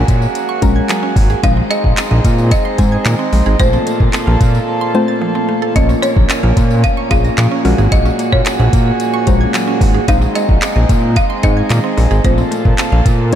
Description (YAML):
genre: dance-pop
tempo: 111 BPM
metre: 4/4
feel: straight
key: unclear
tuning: A4 = 438 Hz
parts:
  - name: folk marimba with hard mallets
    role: melody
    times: 0.0-13.4 s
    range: C5 to F5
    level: -22 LUFS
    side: equal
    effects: tape echo
  - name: pedal harmonium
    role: sustained chords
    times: 0.0-13.4 s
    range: Bb2 to A4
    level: -19 LUFS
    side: right 1 dB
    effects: sidechain pumping
  - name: mallet-like synth pluck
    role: arpeggios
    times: 0.0-13.0 s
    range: Eb3 to Bb6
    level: -24 LUFS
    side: right 3 dB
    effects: chorus, sidechain pumping, tape echo
  - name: fat analog bass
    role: bass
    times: 0.0-13.4 s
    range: Ab1 to Bb2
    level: -13 LUFS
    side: equal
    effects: sidechain pumping
  - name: smooth R&B drum kit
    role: drums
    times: 0.1-13.4 s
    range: handclaps, hi-hat, kick drum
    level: -16 LUFS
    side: equal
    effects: none
  - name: tambourine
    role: percussion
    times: 0.1-13.4 s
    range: none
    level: -36 LUFS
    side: left 11 dB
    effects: none
  - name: soft round pluck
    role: accompaniment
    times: 0.6-13.4 s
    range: Ab3 to Db5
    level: -21 LUFS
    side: left 3 dB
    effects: chorus, sidechain pumping
room: light reverb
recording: none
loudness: -11 LUFS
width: side -10 dB against mid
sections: 0.0-13.4 A section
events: break 4.7-5.8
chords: 0.0 Gbadd9; 1.4 Ab/Bb; 3.6 F/Bb; 5.8 Bbmadd9; 7.7 Gbadd9; 10.1 Ab/Bb; 12.2 F/Bb